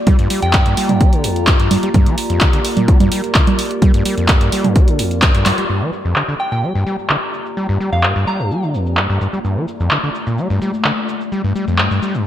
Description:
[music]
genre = acid house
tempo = 128 BPM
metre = 4/4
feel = straight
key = G minor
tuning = A4 = 437 Hz
[part]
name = warbly tape-like pad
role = sustained chords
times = 0.0-12.3 s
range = A3 to D5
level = -24 LUFS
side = left 2 dB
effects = chorus, built-in reverb, sidechain pumping
[part]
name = warbly tape-like pad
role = texture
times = 0.0-12.3 s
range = G4 to Bb5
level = -29 LUFS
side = equal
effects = chorus, built-in reverb, sidechain pumping
[part]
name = overdriven acid bass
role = riff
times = 0.1-12.3 s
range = F2 to G3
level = -19 LUFS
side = equal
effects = distortion, tube saturation
[part]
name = electronic kick drum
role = drums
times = 0.1-5.3 s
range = none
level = -13 LUFS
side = equal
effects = none
[part]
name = punchy analog drum machine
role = drums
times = 0.1-12.2 s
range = cabasa, congas, handclaps, hi-hat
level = -18 LUFS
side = right 2 dB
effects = low-pass filter on hats, low-pass filter on perc, low-pass filter on snare, low-pass filter on room, gated reverb
[part]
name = soft synth bell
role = melody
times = 0.4-1.1, 6.4-8.6 s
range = F5 to Bb5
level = -24 LUFS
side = right 1 dB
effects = chorus, ping-pong delay
[sound]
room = light reverb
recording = bright 1980s-style digital production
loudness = -13 LUFS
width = side -11 dB against mid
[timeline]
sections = 0.0-5.7 A section; 5.7-12.3 B section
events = drum fill 5.5; band accent 5.5; filter sweep on ambient pad 5.7-12.3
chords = 0.0 Gm7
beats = | 0.07 0.54 1.01 1.48 | 1.95 2.41 2.88 3.35 | 3.82 4.29 4.76 5.23 | 5.70 6.16 6.63 7.10 | 7.57 8.04 8.51 8.98 | 9.45 9.91 10.38 10.85 | 11.32 11.79 12.26

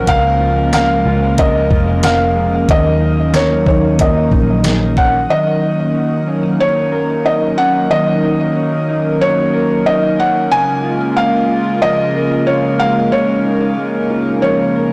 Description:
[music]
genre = dream pop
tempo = 92 BPM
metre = 4/4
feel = straight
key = Eb minor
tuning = A4 = 440 Hz
[part]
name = felt-muted upright piano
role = melody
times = 0.0-14.9 s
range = Db5 to Ab5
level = -18 LUFS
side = equal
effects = tape echo, shimmer reverb
[part]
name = hollow soft pad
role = sustained chords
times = 0.0-14.9 s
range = Db3 to Bb4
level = -19 LUFS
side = equal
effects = chorus, shimmer reverb
[part]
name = mellow electric guitar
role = arpeggios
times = 0.0-14.9 s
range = Db3 to Bb4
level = -22 LUFS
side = equal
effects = subtle chorus, tape echo, shimmer reverb
[part]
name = vintage muted picked electric bass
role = bass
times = 0.0-5.3 s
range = F1 to Eb2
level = -20 LUFS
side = equal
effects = transformer saturation
[part]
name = detuned 8-bit digital drum machine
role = drums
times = 0.1-5.1 s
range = hi-hat, kick drum, snare drum, tambourine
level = -18 LUFS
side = equal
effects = none
[sound]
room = moderate plate reverb, RT60 1.3 s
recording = blown-out, overdriven recording, overdrive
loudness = -14 LUFS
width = mono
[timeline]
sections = 0.0-5.3 A section; 5.3-14.9 B section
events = none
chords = 0.1 Bbm7/Db; 2.7 Ebm7; 10.5 Bbm7/Db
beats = | 0.07 0.73 1.38 2.03 | 2.68 3.34 3.99 4.64 | 5.29 5.94 6.60 7.25 | 7.90 8.55 9.21 9.86 | 10.51 11.16 11.81 12.47 | 13.12 13.77 14.42

